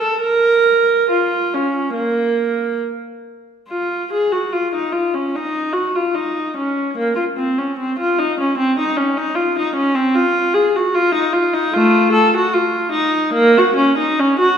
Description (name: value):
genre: classical, baroque-style suite movement for unaccompanied viola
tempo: 68-77 BPM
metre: 4/4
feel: rubato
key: Bb minor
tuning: A4 = 439 Hz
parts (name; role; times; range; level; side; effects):
- warm viola; solo; 0.0-14.6 s; A3 to Bb4; -15 LUFS; equal; none
room: wet recital hall reverb, RT60 1.6 s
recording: recorded in a church or concert hall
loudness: -15 LUFS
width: side -8 dB against mid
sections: 0.0-3.7 A section; 3.7-14.6 B section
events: none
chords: none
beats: | 0.22 1.09 1.96 2.82 | 3.68 4.50 5.32 6.12 | 6.94 7.75 8.56 9.36 | 10.16 10.96 11.75 12.55 | 13.36 14.18